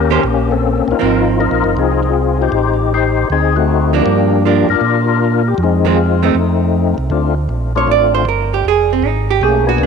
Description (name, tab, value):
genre	jazz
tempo	157 BPM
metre	4/4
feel	swing 65% on 8ths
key	unclear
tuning	A4 = 440 Hz
part	percussive tonewheel organ	melody	0.0-9.9 s	Ab3 to C5	-15 LUFS	left 10 dB	slow rotary speaker, overdrive, chorus vibrato, tape echo
part	mellow tonewheel organ	bass	0.0-9.9 s	F1 to Bb2	-16 LUFS	right 2 dB	slow rotary speaker
part	hollow-body jazz guitar	accompaniment	0.1-9.9 s	Eb3 to D5	-16 LUFS	right 12 dB	none
room	moderate plate reverb, RT60 2.9 s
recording	1960s-style stereo with parts hard left and right, faint mains hum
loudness	-12 LUFS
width	side -6 dB against mid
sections	0.0-7.1 A section; 7.1-9.9 B section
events	hollow-body jazz guitar solo 7.1-9.9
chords	0.0 Eb13; 1.0 Ab69; 2.5 Am7b5; 3.3 D7b9; 4.1 Gm7; 5.6 Fm7; 6.4 F7; 7.1 Bbmaj7; 8.7 Fm